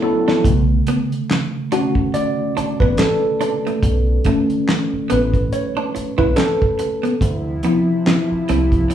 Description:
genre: R&B, neo-soul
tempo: 71 BPM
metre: 4/4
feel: swing 58% on 16ths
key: unclear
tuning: A4 = 440 Hz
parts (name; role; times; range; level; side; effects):
- archtop guitar, miked and amplified; second line; 0.0-8.9 s; A3 to E4; -24 LUFS; right 3 dB; none
- mellow tine electric piano; accompaniment; 0.0-8.9 s; C#3 to D5; -18 LUFS; equal; medium stereo tremolo
- chorused pulse-width pad; sustained chords; 0.0-0.4, 7.2-8.9 s; C3 to E4; -25 LUFS; right 1 dB; none
- cloth-damped thuddy drum kit; drums; 0.3-8.9 s; handclaps, hi-hat, kick drum, snare drum; -20 LUFS; equal; none
- deep dub fingered electric bass; bass; 0.5-8.8 s; A1 to D2; -19 LUFS; equal; none
room: moderate studio reverb, RT60 0.8 s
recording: band playing live in one room, studio reverb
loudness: -16 LUFS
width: side -10 dB against mid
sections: 0.5-8.9 A section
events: drum fill 0.0-0.5; tine electric piano solo 0.5-8.9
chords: 0.5 Bm9; 7.2 Dm9

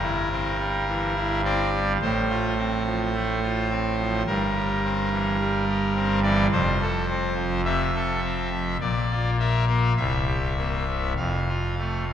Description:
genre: classical, chorale-style piece for pipe organ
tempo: 53 BPM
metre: 4/4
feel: rubato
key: F major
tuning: A4 = 445 Hz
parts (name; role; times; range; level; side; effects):
- pipe organ, trumpet; solo; 0.0-12.1 s; C1 to F5; -22 LUFS; equal; none
room: wet church reverb, RT60 2.8 s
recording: none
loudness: -22 LUFS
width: side -9 dB against mid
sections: 0.0-12.1 A section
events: none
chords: 0.0 C7/G; 2.0 F/A; 4.3 C7/G; 6.5 F; 8.8 Bb; 10.0 C7; 11.2 F

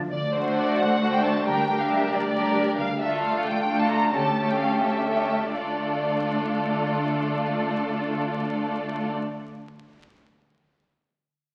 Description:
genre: classical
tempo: 81-91 BPM (dotted quarters)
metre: 6/8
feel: straight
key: D minor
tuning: A4 = 441 Hz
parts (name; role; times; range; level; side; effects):
- warm symphonic violin section; melody; 0.1-9.1 s; C5 to Bb5; -31 LUFS; equal; none
- warm symphonic cello section; bass; 0.1-9.1 s; D2; -35 LUFS; equal; none
- warm symphonic double bass section; bass; 0.1-9.1 s; D2; -38 LUFS; equal; none
- warm symphonic violin section; second line; 0.3-9.1 s; F4 to C5; -30 LUFS; equal; none
- warm studio viola section; accompaniment; 0.3-9.1 s; G3 to D4; -29 LUFS; equal; none
room: wet recital hall reverb, RT60 1.5 s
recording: very old 78 rpm record, vinyl crackle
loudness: -25 LUFS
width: mono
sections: 0.1-5.6 A section; 5.6-8.4 B section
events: slowing down 2.1-5.6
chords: 0.1 D7; 1.5 Gm/D; 2.8 Dm; 4.1 A7/D; 5.6 Dm

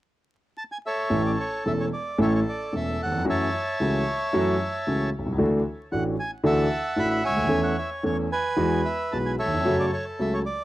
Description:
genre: tango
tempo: 112 BPM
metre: 4/4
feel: rubato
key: A major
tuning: A4 = 440 Hz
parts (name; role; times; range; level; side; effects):
- bandoneon; melody; 0.6-10.6 s; A4 to B5; -27 LUFS; right 1 dB; none
- clear concert grand piano; accompaniment; 1.1-10.4 s; E1 to A4; -24 LUFS; equal; none
room: light reverb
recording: dry, close 1970s-style studio recording, vinyl crackle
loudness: -22 LUFS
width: side -16 dB against mid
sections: 0.0-1.1 A section; 1.1-10.6 B section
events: none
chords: 0.0 A; 3.2 F#m7; 5.4 Dadd9; 7.5 A/E; 8.6 Eadd9; 9.7 F#m

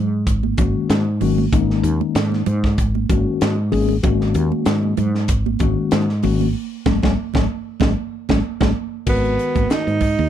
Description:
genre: electric jazz fusion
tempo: 96 BPM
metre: 4/4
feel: swing 55% on 16ths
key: G# minor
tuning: A4 = 442 Hz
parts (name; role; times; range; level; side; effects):
- woody fretless electric bass; bass; 0.0-10.3 s; G#1 to G#2; -19 LUFS; right 1 dB; analog chorus
- crisp fusion drum kit; drums; 0.3-10.2 s; crash cymbal, hi-hat, kick drum, snare drum; -22 LUFS; equal; none
- congas; percussion; 0.4-10.3 s; none; -26 LUFS; right 24 dB; none
- mellow tine electric piano; accompaniment; 0.6-10.0 s; D#3 to A#4; -21 LUFS; left 8 dB; medium stereo tremolo, phaser
- bright tenor saxophone; melody; 9.1-10.3 s; B3 to D#4; -20 LUFS; right 3 dB; none
room: little or no reverb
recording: none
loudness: -16 LUFS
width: side -10 dB against mid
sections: 0.0-9.1 A section; 9.1-10.3 B section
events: band accent 6.6-9.1; drum fill 7.8-9.1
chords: 0.0 G#9sus4; 9.1 G#m9

